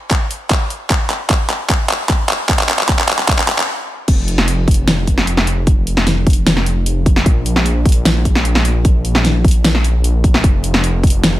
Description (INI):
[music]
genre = future bass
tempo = 151 BPM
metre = 4/4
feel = half-time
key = unclear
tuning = A4 = 440 Hz
[part]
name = electronic kick drum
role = drums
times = 0.1-11.1 s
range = none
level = -14 LUFS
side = equal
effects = none
[part]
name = pop drum kit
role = drums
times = 0.1-11.3 s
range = crash cymbal, handclaps, hi-hat, snare drum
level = -16 LUFS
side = equal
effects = none
[part]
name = wide detuned saw bass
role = bass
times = 4.1-11.4 s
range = F1 to Bb1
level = -16 LUFS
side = equal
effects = chorus, sidechain pumping
[sound]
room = little or no reverb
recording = none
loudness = -12 LUFS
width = side -15 dB against mid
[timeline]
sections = 0.0-4.1 A section; 4.1-11.4 B section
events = build-up 0.0-4.1; drum fill 0.0-3.7; stop 3.7-4.1; drop 4.1-11.4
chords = none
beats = 0.11 0.51 | 0.90 1.30 1.70 2.10 | 2.49 2.89 3.29 3.68 | 4.08 4.48 4.88 5.27 | 5.67 6.07 6.47 6.86 | 7.26 7.66 8.05 8.45 | 8.85 9.25 9.64 10.04 | 10.44 10.84 11.23